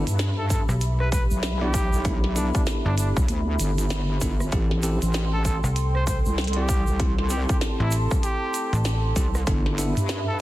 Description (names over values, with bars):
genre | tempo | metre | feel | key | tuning
glitch hop | 97 BPM | 4/4 | swing 61% on 16ths | A minor | A4 = 440 Hz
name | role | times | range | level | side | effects
dark analog pad | sustained chords | 0.0-10.4 s | G4 to C6 | -33 LUFS | right 1 dB | chorus, sidechain pumping
bell-like tine electric piano | stabs | 0.0-9.9 s | B3 to D5 | -32 LUFS | equal | sidechain pumping, digital delay
wobble bass | bass | 0.0-10.4 s | G1 to G2 | -25 LUFS | equal | chorus, tube saturation
glitchy drum kit | drums | 0.1-10.2 s | hi-hat, rim click, snare drum | -33 LUFS | equal | studio reverb, soft clipping on snare
egg shaker | percussion | 0.1-10.2 s | none | -37 LUFS | right 1 dB | none
breathy trumpet | melody | 0.4-10.4 s | D4 to C5 | -32 LUFS | equal | digital delay
electronic kick drum | drums | 0.5-9.6 s | none | -24 LUFS | equal | overdrive, studio reverb
slap-like FM bass | bass | 0.7-9.1 s | G1 to C2 | -22 LUFS | equal | none
room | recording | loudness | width
little or no reverb | dense, heavily limited modern master, vinyl crackle | -21 LUFS | side -16 dB against mid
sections
0.0-10.4 A section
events
none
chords
0.0 G6; 4.5 Am7; 9.5 G6